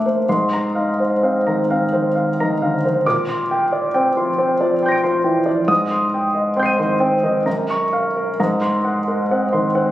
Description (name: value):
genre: classical, impressionist solo piano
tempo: 67 BPM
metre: 3/4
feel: uneven beats, rubato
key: unclear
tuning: A4 = 440 Hz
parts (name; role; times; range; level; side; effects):
- clear grand piano; solo; 0.0-9.9 s; Gb2 to Eb7; -16 LUFS; equal; none
room: wet recital hall reverb, RT60 1.6 s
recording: recorded on a phone in the room, studio reverb, compression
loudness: -16 LUFS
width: side -14 dB against mid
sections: 0.0-9.9 A section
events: none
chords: 0.3 Ab69; 3.0 Bb69; 5.7 Abmaj7; 7.5 Gbmaj7; 8.4 Ab9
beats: | 0.27 1.22 2.15 | 3.05 3.94 4.81 | 5.69 6.58 7.46 | 8.38 9.29